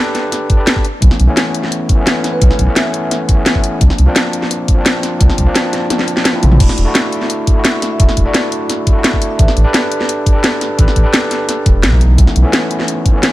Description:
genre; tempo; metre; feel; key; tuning
liquid drum and bass; 172 BPM; 4/4; straight; unclear; A4 = 441 Hz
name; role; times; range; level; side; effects
overdriven tine electric piano; accompaniment; 0.0-13.3 s; E3 to B4; -18 LUFS; equal; dub echo
drum and bass drum kit; drums; 0.1-13.3 s; crash cymbal, hi-hat, snare drum, toms; -15 LUFS; equal; none
electronic kick drum; drums; 0.5-13.1 s; none; -12 LUFS; equal; none
warm sub bass; bass; 1.0-12.4 s; E1 to C2; -11 LUFS; equal; tube saturation
vibraphone with soft mallets; melody; 2.3-3.1, 7.9-9.4 s; B4 to E5; -24 LUFS; right 1 dB; tape echo
room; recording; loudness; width
little or no reverb; none; -10 LUFS; side -16 dB against mid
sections
0.0-13.3 A section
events
kick drops out 5.9-6.6; drum fill 5.9-6.6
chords
0.0 A9sus4; 0.8 B9sus4; 3.8 C9sus4; 6.6 E9sus4; 9.4 A9sus4; 12.0 B9sus4

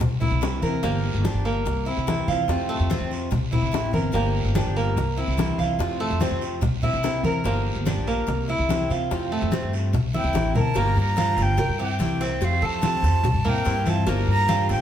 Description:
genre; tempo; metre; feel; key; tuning
latin, Cuban son and guajira; 145 BPM; 4/4; straight; unclear; A4 = 439 Hz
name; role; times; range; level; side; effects
picked swing-style acoustic guitar; accompaniment; 0.0-14.8 s; C3 to G4; -31 LUFS; left 4 dB; none
upright bass; bass; 0.0-14.8 s; G1 to F3; -25 LUFS; equal; none
bongos and cowbell; percussion; 0.0-14.8 s; none; -34 LUFS; left 3 dB; none
congas; percussion; 0.0-14.8 s; none; -27 LUFS; left 1 dB; none
guiro; percussion; 0.0-14.8 s; none; -39 LUFS; right 3 dB; none
Cuban tres; arpeggios; 0.2-14.8 s; A3 to Bb4; -27 LUFS; right 2 dB; none
breathy silver concert flute; melody; 10.2-14.8 s; F5 to Bb5; -26 LUFS; right 2 dB; plate reverb
room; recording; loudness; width
wet studio reverb, RT60 1.0 s; heard from further back in the room; -21 LUFS; side -10 dB against mid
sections
0.0-10.8 A section; 10.8-14.8 B section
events
drum fill 10.1-10.8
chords
0.0 C7; 0.8 Gm7; 1.7 C7; 2.5 F; 3.3 C7; 4.1 Gm7; 5.0 C7; 5.8 F; 6.6 C7; 7.5 Gm7; 8.3 C7; 9.1 F; 9.9 C7; 10.8 Gm7; 11.6 C7; 12.4 F; 13.2 C7; 14.1 Gm7

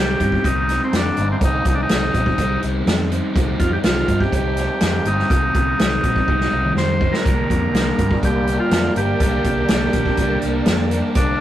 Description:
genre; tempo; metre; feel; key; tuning
psychedelic rock; 123 BPM; 4/4; straight; C dorian; A4 = 441 Hz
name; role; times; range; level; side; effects
combo organ; melody; 0.0-11.4 s; C4 to C5; -21 LUFS; equal; none
crunchy overdriven guitar; riff; 0.0-11.4 s; G2 to Eb4; -23 LUFS; equal; phaser
fingered electric bass; bass; 0.0-11.3 s; G1 to G2; -23 LUFS; equal; none
vintage drum kit; drums; 0.2-11.3 s; hi-hat, kick drum, snare drum, toms; -20 LUFS; equal; none
string machine, violas; sustained chords; 7.2-11.4 s; Bb4 to A5; -28 LUFS; right 2 dB; ensemble chorus
room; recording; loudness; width
moderate stone room reverb, RT60 1.2 s; rough rehearsal-room recording; -16 LUFS; side -12 dB against mid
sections
0.0-11.4 A section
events
drum fill 6.3-7.3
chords
0.0 Cm; 7.3 Gmadd9

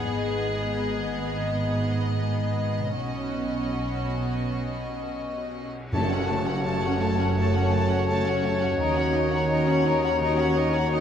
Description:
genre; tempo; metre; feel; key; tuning
cinematic, emotional film score for orchestra; 84 BPM; 4/4; rubato; F# dorian; A4 = 440 Hz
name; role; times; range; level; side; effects
warm studio violin section; melody; 0.0-11.0 s; D#5 to A5; -33 LUFS; left 2 dB; none
rich studio violin section; second line; 0.0-11.0 s; F#4 to C#5; -36 LUFS; left 2 dB; none
warm studio viola section; accompaniment; 0.0-11.0 s; A3 to D#4; -32 LUFS; right 1 dB; none
concert harp; arpeggios; 0.0-11.0 s; F#2 to G#4; -34 LUFS; left 6 dB; none
dark studio cello section; bass; 0.0-11.0 s; D#2 to B2; -31 LUFS; right 3 dB; none
dark studio double bass section; bass; 0.0-11.0 s; F#1 to D#2; -30 LUFS; right 3 dB; none
cymbal swell and tam-tam; percussion; 3.0-8.7 s; none; -36 LUFS; right 1 dB; none
bright oboe; second line; 5.9-11.0 s; C#5; -33 LUFS; right 2 dB; none
dark clarinet; second line; 5.9-11.0 s; F#4; -32 LUFS; left 2 dB; none
mellow hollow flute section; second line; 5.9-11.0 s; A5 to A#5; -32 LUFS; left 5 dB; none
mellow French horn section; sustained chords; 5.9-11.0 s; C#4 to A4; -28 LUFS; left 4 dB; none
timpani; percussion; 5.9-7.0 s; F#2; -33 LUFS; equal; none
room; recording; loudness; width
wet scoring stage reverb, RT60 1.9 s; none; -23 LUFS; side -8 dB against mid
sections
0.0-5.9 A section; 5.9-11.0 B section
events
band accent 5.9-6.7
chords
0.1 G#m; 3.0 Badd9; 5.9 F#m; 8.8 D#m7

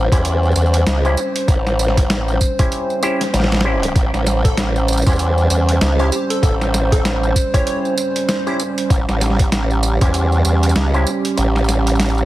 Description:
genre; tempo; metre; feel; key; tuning
glitch hop; 97 BPM; 4/4; swing 59% on 16ths; unclear; A4 = 440 Hz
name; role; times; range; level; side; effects
dark analog pad; sustained chords; 0.0-12.2 s; G3 to B#4; -22 LUFS; right 2 dB; chorus, vintage 12-bit sampler grit, sidechain pumping
formant-sweep wobble bass; bass; 0.0-12.2 s; A1 to E2; -16 LUFS; equal; chorus, overdrive
auto-wah clav; stabs; 0.1-11.1 s; C#4 to B#4; -24 LUFS; left 1 dB; sidechain pumping, dub echo
boom bap sampler-style drum kit; drums; 0.1-12.2 s; hi-hat, snare drum, tambourine; -22 LUFS; right 1 dB; none
electronic kick drum; drums; 0.1-10.1 s; none; -16 LUFS; equal; none
plucky unison lead; melody; 4.4-8.5 s; G4 to C#5; -27 LUFS; left 1 dB; dub echo
room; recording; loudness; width
light reverb, digital ambience; heavily compressed radio sound; -14 LUFS; side -16 dB against mid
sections
0.0-12.2 A section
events
kick drops out 11.4-12.2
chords
0.0 A7#9

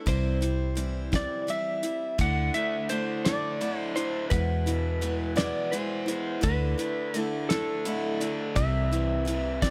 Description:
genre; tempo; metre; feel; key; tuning
folk rock and heartland rock; 56 BPM (dotted quarters); 6/8; straight; unclear; A4 = 439 Hz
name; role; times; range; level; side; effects
picked steel-string acoustic guitar; accompaniment; 0.0-9.7 s; E2 to E4; -35 LUFS; equal; none
electric slide guitar; melody; 0.1-9.7 s; A4 to F#5; -34 LUFS; equal; analog delay
vintage muted picked electric bass; bass; 0.1-9.7 s; C2 to E2; -30 LUFS; equal; none
damped 70s drum kit; drums; 0.1-9.7 s; hi-hat, kick drum, snare drum; -31 LUFS; equal; none
overdriven electric guitar; riff; 2.2-9.7 s; E2 to E4; -37 LUFS; equal; none
room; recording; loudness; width
little or no reverb; none; -28 LUFS; mono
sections
0.0-9.7 A section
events
none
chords
0.1 C; 2.2 Dsus2; 4.3 E; 6.4 Dsus2; 8.6 C

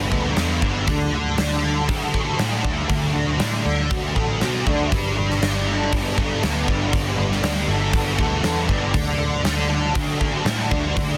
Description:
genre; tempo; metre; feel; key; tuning
rock, shoegaze and dream pop; 119 BPM; 4/4; straight; D major; A4 = 441 Hz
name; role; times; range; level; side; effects
thick fuzz guitar; riff; 0.0-11.2 s; D3 to A4; -25 LUFS; equal; distortion, ensemble chorus
vintage muted picked electric bass; bass; 0.0-11.2 s; G1 to D3; -27 LUFS; equal; none
huge arena drum kit; drums; 0.1-11.1 s; hi-hat, kick drum, snare drum; -26 LUFS; equal; none
room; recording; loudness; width
little or no reverb; dense, heavily limited modern master; -21 LUFS; mono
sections
0.0-11.2 A section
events
none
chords
0.0 Gadd9; 0.9 D; 4.9 Gadd9; 8.9 D

